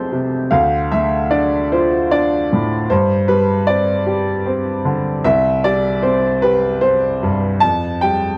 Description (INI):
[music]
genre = neoclassical minimalist piano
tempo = 76 BPM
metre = 3/4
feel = rubato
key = unclear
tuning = A4 = 439 Hz
[part]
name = clear baby grand piano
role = solo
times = 0.0-8.4 s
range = C2 to G6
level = -17 LUFS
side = equal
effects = none
[sound]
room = light reverb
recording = worn, warbling old tape, cassette tape, warbly pitch drift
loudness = -17 LUFS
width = mono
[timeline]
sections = 0.0-8.4 A section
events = none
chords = 0.0 Fadd9; 0.5 Dm; 2.9 Gsus4; 5.2 C5; 7.6 Fsus2